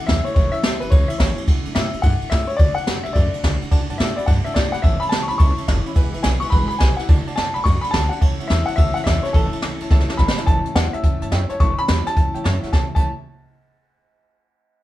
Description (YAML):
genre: rockabilly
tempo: 213 BPM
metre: 4/4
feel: swing 64% on 8ths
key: A major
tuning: A4 = 440 Hz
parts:
  - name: bright upright piano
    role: melody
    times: 0.0-13.1 s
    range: A4 to C#6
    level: -24 LUFS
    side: left 2 dB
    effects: none
  - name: picked steel-string acoustic guitar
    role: accompaniment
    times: 0.0-13.1 s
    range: E2 to F#4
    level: -31 LUFS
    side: left 2 dB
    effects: none
  - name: upright bass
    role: bass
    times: 0.1-13.1 s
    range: E1 to A2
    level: -22 LUFS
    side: equal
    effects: none
  - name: jazz brush drum kit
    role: drums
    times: 0.1-13.0 s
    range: crash cymbal, hi-hat, kick drum, ride cymbal, snare drum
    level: -18 LUFS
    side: equal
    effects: none
  - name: clear upright piano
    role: accompaniment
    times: 3.7-13.1 s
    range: B4 to B5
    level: -33 LUFS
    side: right 3 dB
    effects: none
room: light reverb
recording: band playing live in one room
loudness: -16 LUFS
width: side -15 dB against mid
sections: 0.0-10.5 A section; 10.5-12.7 B section; 12.7-13.9 C section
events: drum fill 9.9-10.5; upright piano fill 9.9-10.5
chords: 0.0 A; 1.5 D; 4.8 A; 6.0 E; 7.1 D; 8.2 A